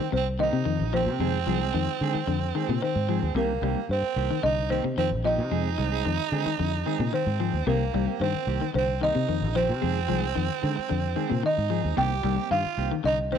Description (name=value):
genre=afrobeat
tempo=111 BPM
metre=4/4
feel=straight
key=C minor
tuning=A4 = 438 Hz
part: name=folk marimba with medium mallets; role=melody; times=0.0-13.4 s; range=Bb4 to G5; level=-29 LUFS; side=equal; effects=none
part: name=breathy tenor saxophone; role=second line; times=0.0-13.4 s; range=Bb3 to G4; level=-31 LUFS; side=right 12 dB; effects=none
part: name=electric guitar at the edge of break-up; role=arpeggios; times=0.0-13.4 s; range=C3 to G3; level=-30 LUFS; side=left 11 dB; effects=spring reverb, slapback echo
part: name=mellow electric guitar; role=stabs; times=0.0-13.4 s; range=Eb3 to Ab4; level=-34 LUFS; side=right 11 dB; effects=spring reverb, slapback echo
part: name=fingered electric bass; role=bass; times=0.1-13.4 s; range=Bb1 to D3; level=-28 LUFS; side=left 1 dB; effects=none
room=light reverb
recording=1960s-style stereo with parts hard left and right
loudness=-24 LUFS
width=side -8 dB against mid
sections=0.0-13.4 A section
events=none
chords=0.0 Cm7; 1.2 Fm7; 3.4 Cm7; 5.5 Fm7; 7.7 Cm7; 9.8 Fm7; 12.0 Cm7